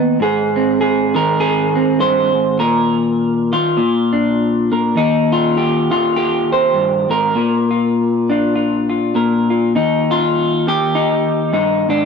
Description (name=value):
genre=folk, solo fingerstyle acoustic guitar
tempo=101 BPM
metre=4/4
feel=swing 58% on 8ths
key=Eb major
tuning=A4 = 442 Hz
part: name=electric guitar through a small old amp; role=solo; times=0.0-12.1 s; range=D#2 to C5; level=-13 LUFS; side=equal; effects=spring reverb
room=little or no reverb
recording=dry, close 1970s-style studio recording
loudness=-13 LUFS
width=side -5 dB against mid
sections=0.0-12.1 A section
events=none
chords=0.2 Ab; 2.6 Bbsus4; 3.8 Bb; 5.0 Eb; 7.4 Bb; 9.7 Eb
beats=| 0.21 0.80 1.40 2.00 | 2.59 3.19 3.78 4.38 | 4.97 5.57 6.17 6.76 | 7.36 7.96 8.55 9.15 | 9.75 10.34 10.94 11.54